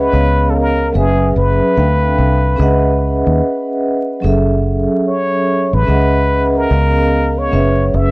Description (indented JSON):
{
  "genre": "hip hop",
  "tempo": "73 BPM",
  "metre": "4/4",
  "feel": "swing 63% on 16ths",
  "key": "C# minor",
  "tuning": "A4 = 439 Hz",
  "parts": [
    { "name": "trumpet with plunger mute", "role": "melody", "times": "0.0-8.1 s", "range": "G#4 to E5", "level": "-17 LUFS", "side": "left 1 dB", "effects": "none" },
    { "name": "vibraphone with soft mallets", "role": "accompaniment", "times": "0.0-8.1 s", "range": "F#3 to G5", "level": "-16 LUFS", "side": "right 1 dB", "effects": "none" },
    { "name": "fingered electric bass", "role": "bass", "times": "0.0-8.1 s", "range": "F#1 to D#2", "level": "-14 LUFS", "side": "equal", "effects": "transformer saturation" }
  ],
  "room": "light reverb",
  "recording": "dry, gritty hardware recording, vinyl crackle",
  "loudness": "-11 LUFS",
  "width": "side -24 dB against mid",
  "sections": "0.0-8.1 A section",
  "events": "none",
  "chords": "0.1 C#13; 0.9 F#9sus4; 1.8 Dm11; 2.6 C#m11; 4.2 F#m7; 5.9 C#m11; 6.7 C#13; 7.5 F#9sus4"
}